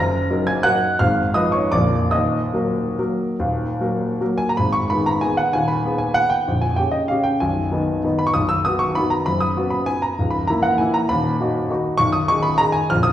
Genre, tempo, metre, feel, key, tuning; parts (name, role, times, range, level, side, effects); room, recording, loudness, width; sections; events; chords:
classical, piano waltz; 133-209 BPM; 3/4; rubato; Eb minor, G# minor from 4.6 s; A4 = 440 Hz
warm baby grand piano; solo; 0.0-13.1 s; Bb0 to Bb6; -17 LUFS; equal
wet recital hall reverb, RT60 1.4 s; heard from further back in the room, nothing above 11.0 kHz; -17 LUFS; side -11 dB against mid
0.0-4.6 A section; 4.6-13.1 B section
0.0 Ebm/Gb; 1.0 Fm7b5/Ab; 1.7 Bb; 2.1 Ebm; 4.6 G#m; 6.5 Gdim/Bb; 7.4 G#m/B; 8.4 B; 10.2 A#dim/C#; 11.1 B/D#; 12.0 Abm/Cb